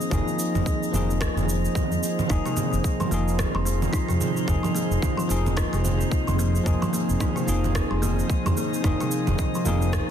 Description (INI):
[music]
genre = organic downtempo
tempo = 110 BPM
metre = 4/4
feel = swing 59% on 16ths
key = F minor pentatonic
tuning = A4 = 440 Hz
[part]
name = bell-like tine electric piano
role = accompaniment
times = 0.0-10.1 s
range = F3 to Ab4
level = -30 LUFS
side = left 3 dB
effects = sidechain pumping, tape echo
[part]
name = airy breathy pad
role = sustained chords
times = 0.0-10.1 s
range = F3 to C5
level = -31 LUFS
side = right 2 dB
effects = chorus, sidechain pumping
[part]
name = electronic shaker, congas and rim click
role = drums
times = 0.0-10.1 s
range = none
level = -29 LUFS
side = right 3 dB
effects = overdrive
[part]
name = drifting glass-harmonics texture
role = texture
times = 0.0-10.1 s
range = Eb4 to Eb5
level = -34 LUFS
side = left 1 dB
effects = chorus, built-in reverb
[part]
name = smooth synth bass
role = bass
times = 0.1-10.0 s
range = F1 to F2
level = -25 LUFS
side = equal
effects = tube saturation
[part]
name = electronic kick drum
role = drums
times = 0.1-10.1 s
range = none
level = -26 LUFS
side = equal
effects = overdrive
[part]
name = kalimba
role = arpeggios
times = 2.3-9.8 s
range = C3 to Eb4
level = -29 LUFS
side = equal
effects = tape echo
[sound]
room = light reverb, digital ambience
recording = dense, heavily limited modern master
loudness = -21 LUFS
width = side -9 dB against mid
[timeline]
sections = 0.0-10.1 A section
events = none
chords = 0.0 Fm7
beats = | 0.12 0.66 1.21 1.75 | 2.30 2.84 3.39 3.93 | 4.48 5.03 5.57 6.12 | 6.66 7.21 7.75 8.30 | 8.84 9.39 9.93